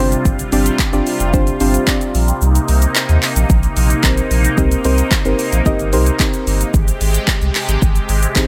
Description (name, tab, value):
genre	dance-pop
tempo	111 BPM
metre	4/4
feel	straight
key	C minor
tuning	A4 = 441 Hz
part	deep mellow chord stab	accompaniment	0.0-8.5 s	C4 to Eb5	-21 LUFS	equal	chorus, sidechain pumping
part	filtered supersaw swell	sustained chords	0.0-8.5 s	C3 to G4	-24 LUFS	equal	phaser, sidechain pumping
part	warm sub bass	bass	0.0-8.5 s	F1 to Eb2	-18 LUFS	equal	sidechain pumping
part	deep house drum kit	drums	0.1-8.5 s	handclaps, hi-hat, kick drum, shaker	-20 LUFS	equal	none
part	group handclap	percussion	0.8-8.5 s	none	-34 LUFS	equal	none
room	little or no reverb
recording	none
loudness	-15 LUFS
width	mono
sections	0.0-8.5 A section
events	kick muted 2.4-3.5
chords	0.0 G7sus4; 2.4 Cm7; 6.7 Abmaj7